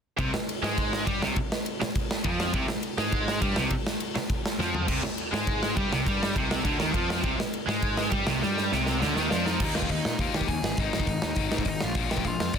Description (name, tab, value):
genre	punk rock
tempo	204 BPM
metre	4/4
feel	straight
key	C minor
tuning	A4 = 440 Hz
part	distorted electric guitar	riff	0.2-12.6 s	Ab2 to Eb4	-32 LUFS	left 13 dB	overdrive
part	tight distorted guitar	riff	0.2-9.6 s	C3 to Ab3	-32 LUFS	right 11 dB	distortion
part	tight distorted guitar	riff	0.2-9.6 s	C3 to Ab3	-33 LUFS	equal	distortion
part	fuzz picked electric bass	bass	0.2-12.6 s	Ab1 to Eb3	-32 LUFS	equal	overdrive
part	big rock drum kit	drums	0.2-12.6 s	crash cymbal, hi-hat, kick drum, ride cymbal, snare drum, splash cymbal, toms	-28 LUFS	equal	none
part	nasal lead guitar with a parked wah	melody	9.3-12.6 s	D4 to Ab5	-33 LUFS	left 3 dB	overdrive, ping-pong delay
room	little or no reverb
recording	dense, heavily limited modern master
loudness	-25 LUFS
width	side -7 dB against mid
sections	0.2-9.6 A section; 9.6-12.6 B section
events	drum fill 4.6, 8.4-9.6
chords	0.2 C5; 9.6 Eb; 10.6 Ab5; 11.8 Bb5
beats	| 0.19 0.49 0.78 1.07 | 1.37 1.66 1.96 2.25 | 2.54 2.84 3.13 3.43 | 3.72 4.01 4.31 4.60 | 4.90 5.19 5.48 5.78 | 6.07 6.37 6.66 6.96 | 7.25 7.54 7.84 8.13 | 8.43 8.72 9.02 9.31 | 9.60 9.90 10.19 10.49 | 10.78 11.08 11.37 11.67 | 11.96 12.26 12.55